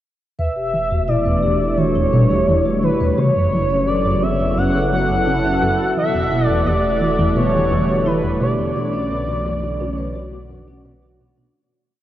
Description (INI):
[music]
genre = ambient, sequencer-driven space music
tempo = 86 BPM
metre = 4/4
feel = straight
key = E dorian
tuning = A4 = 440 Hz
[part]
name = expressive portamento lead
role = melody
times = 0.4-10.8 s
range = B4 to F#5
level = -20 LUFS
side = equal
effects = analog chorus, ping-pong delay
[part]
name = sweeping resonant pad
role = sustained chords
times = 0.4-11.6 s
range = B2 to A4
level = -22 LUFS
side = equal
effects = chorus
[part]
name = vibraphone with soft mallets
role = arpeggios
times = 0.4-11.5 s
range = C#4 to B4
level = -26 LUFS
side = right 1 dB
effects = auto-pan, ping-pong delay
[part]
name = resonant blip pluck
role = riff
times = 0.4-11.5 s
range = E2 to F#3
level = -21 LUFS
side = equal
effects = phaser, wide subtle chorus
[part]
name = warm sub bass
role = bass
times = 0.4-11.5 s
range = E1 to B1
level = -28 LUFS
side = equal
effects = transformer saturation
[sound]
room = wet huge ambient reverb, RT60 7.7 s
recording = worn, warbling old tape, cassette tape, warbly pitch drift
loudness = -16 LUFS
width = side -13 dB against mid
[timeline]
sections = 0.4-11.6 A section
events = filter sweep on synth arpeggio sound 0.4-11.6; fade-out 7.8-11.6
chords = 0.4 Emadd9; 3.2 F#m7; 6.0 Emadd9; 8.8 Bm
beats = | 0.39 1.08 1.78 2.48 | 3.18 3.88 4.57 5.27 | 5.97 6.67 7.36 8.06 | 8.76 9.46 10.15 10.85